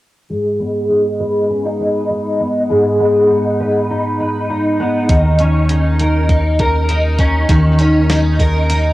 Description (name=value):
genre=dream pop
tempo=100 BPM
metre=4/4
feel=straight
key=unclear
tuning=A4 = 440 Hz
part: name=picked twelve-string acoustic guitar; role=arpeggios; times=0.3-8.9 s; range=Ab2 to Cb5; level=-14 LUFS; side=equal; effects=ensemble chorus, low-pass filter, analog delay
part: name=round analog bass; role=bass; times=5.1-8.9 s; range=Eb2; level=-15 LUFS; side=equal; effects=none
part: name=crisp 8-bit digital drum machine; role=drums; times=5.1-8.8 s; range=hi-hat, kick drum, snare drum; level=-17 LUFS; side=equal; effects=cassette tape
room=moderate small room reverb, RT60 0.5 s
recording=home recording on cassette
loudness=-12 LUFS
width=side -17 dB against mid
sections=0.3-8.9 A section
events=filter sweep on twelve-string acoustic guitar 0.3-8.9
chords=0.3 Abm; 5.1 Eb5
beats=| 0.29 0.90 1.50 2.10 | 2.69 3.29 3.90 4.50 | 5.09 5.70 6.29 6.89 | 7.50 8.10 8.70